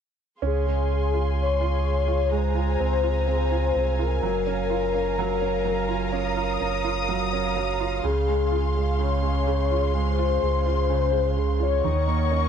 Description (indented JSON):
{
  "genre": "pop",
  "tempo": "63 BPM",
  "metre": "4/4",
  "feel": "straight",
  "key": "Db major",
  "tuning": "A4 = 440 Hz",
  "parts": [
    { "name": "clear concert grand piano", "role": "accompaniment", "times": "0.4-12.5 s", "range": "Db3 to F4", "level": "-28 LUFS", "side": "right 13 dB", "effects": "none" },
    { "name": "warm studio string section", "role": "sustained chords", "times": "0.4-12.5 s", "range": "Db4 to Eb6", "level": "-30 LUFS", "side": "left 1 dB", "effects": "none" },
    { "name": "sub bass with octave", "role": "bass", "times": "0.4-12.5 s", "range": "Gb1 to Eb2", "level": "-25 LUFS", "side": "equal", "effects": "none" },
    { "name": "warm velvety synth lead", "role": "melody", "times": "0.5-12.5 s", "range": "Ab4 to Db5", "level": "-27 LUFS", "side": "left 11 dB", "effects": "chorus" }
  ],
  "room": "light reverb, studio reverb",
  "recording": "1960s-style stereo with parts hard left and right",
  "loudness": "-22 LUFS",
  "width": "side -8 dB against mid",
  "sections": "0.4-12.5 A section",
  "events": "none",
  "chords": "0.4 Dbmaj7; 4.2 Gbmaj7; 8.0 Dbmaj7; 11.9 Ebm7"
}